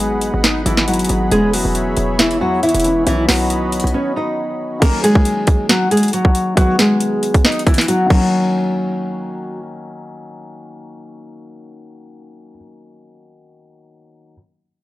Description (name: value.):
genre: hip hop, trap.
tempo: 137 BPM.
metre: 4/4.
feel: half-time.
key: Eb phrygian.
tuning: A4 = 440 Hz.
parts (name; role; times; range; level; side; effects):
nylon-string guitar; melody; 0.0-9.6 s; Fb3 to Eb5; -17 LUFS; equal; low-pass filter.
felt-muted upright piano; accompaniment; 0.0-14.3 s; D#3 to Eb4; -25 LUFS; left 2 dB; low-pass filter.
warm analog pad; sustained chords; 0.0-4.8 s; F#4 to Cb6; -26 LUFS; right 1 dB; chorus.
short 808-style bass; bass; 0.0-3.9 s; E1 to E2; -22 LUFS; equal; none.
trap drum kit; drums; 0.0-8.2 s; crash cymbal, hi-hat, kick drum, snare drum; -16 LUFS; equal; overdrive.
room: digital ambience.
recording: dry, gritty hardware recording.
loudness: -13 LUFS.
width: side -17 dB against mid.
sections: 0.0-4.8 A section; 4.8-8.3 B section; 8.3-11.8 C section.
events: break 3.9-4.8.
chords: 0.0 Abm7; 1.3 E6; 3.1 Badd9; 4.8 Ebm7; 6.6 Abm7; 8.1 Ebm7.